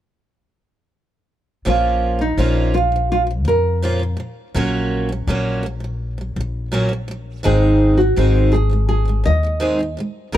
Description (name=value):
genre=pop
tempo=83 BPM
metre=4/4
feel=straight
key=Bb minor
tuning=A4 = 441 Hz
part: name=nylon-string guitar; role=melody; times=1.7-10.4 s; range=Eb4 to Eb5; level=-20 LUFS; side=right 2 dB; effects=none
part: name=picked steel-string acoustic guitar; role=accompaniment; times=1.7-10.4 s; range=Ab2 to Ab4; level=-21 LUFS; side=right 2 dB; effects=none
part: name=upright bass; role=bass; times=1.7-10.4 s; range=Ab1 to F2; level=-19 LUFS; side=left 1 dB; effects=none
room=small room ambience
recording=dry, close 1970s-style studio recording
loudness=-16 LUFS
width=side -12 dB against mid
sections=1.7-10.4 A section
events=none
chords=1.7 Bbm; 4.6 Gb/Bb; 7.5 Ab